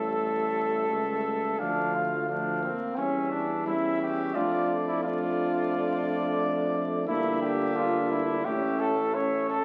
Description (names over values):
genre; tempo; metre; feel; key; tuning
classical, brass quintet; 87 BPM; 4/4; rubato; D minor; A4 = 440 Hz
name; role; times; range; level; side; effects
warm trumpet; melody; 0.0-9.6 s; D5 to F5; -36 LUFS; equal; none
mellow trumpet; second line; 0.0-9.6 s; C4 to C#5; -32 LUFS; equal; none
dark trombone; accompaniment; 0.0-9.6 s; F3 to Bb3; -38 LUFS; equal; none
warm French horn; accompaniment; 0.0-9.6 s; A3 to D4; -35 LUFS; equal; none
warm tuba; bass; 0.0-9.6 s; G1 to F2; -35 LUFS; equal; none
room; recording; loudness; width
wet recital hall reverb, RT60 1.5 s; very old 78 rpm record, vinyl crackle; -28 LUFS; mono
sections
0.0-9.6 A section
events
none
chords
0.0 A7; 1.6 Dm; 3.0 C#dim/E; 4.4 Dm/F; 7.1 Em7b5/G; 8.5 A